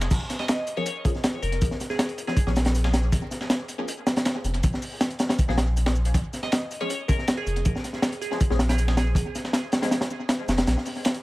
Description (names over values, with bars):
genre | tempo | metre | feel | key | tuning
drum and bass, jungle | 159 BPM | 4/4 | straight | Bb minor | A4 = 440 Hz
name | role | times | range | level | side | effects
saturated sub bass | bass | 0.0-10.8 s | F1 to Bb1 | -24 LUFS | equal | none
dusty soul sampler-style drum kit | drums | 0.0-11.2 s | hi-hat, shaker, snare drum | -38 LUFS | equal | high-pass filter on perc, high-pass filter on snare, high-pass filter on hats, tape echo
crunchy breakbeat drum kit | drums | 0.1-11.2 s | crash cymbal, hi-hat, kick drum, snare drum | -24 LUFS | equal | tape echo
glassy wavetable pluck | melody | 0.4-2.6, 6.4-9.3 s | Ab4 to Eb5 | -34 LUFS | right 1 dB | chorus, dub echo
filtered dub chord stab | stabs | 0.8-9.9 s | F3 to Ab4 | -36 LUFS | left 2 dB | phaser, wide subtle chorus, dub echo
room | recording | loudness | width
small room ambience | echo-heavy mix, vinyl crackle | -22 LUFS | side -19 dB against mid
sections
0.1-11.2 A section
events
drop 0.1-11.2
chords
0.1 Bbm7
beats
| 0.10 0.48 0.86 1.24 | 1.61 1.99 2.37 2.75 | 3.12 3.50 3.88 4.26 | 4.63 5.01 5.39 5.76 | 6.14 6.52 6.90 7.27 | 7.65 8.03 8.41 8.78 | 9.16 9.54 9.92 10.29 | 10.67 11.05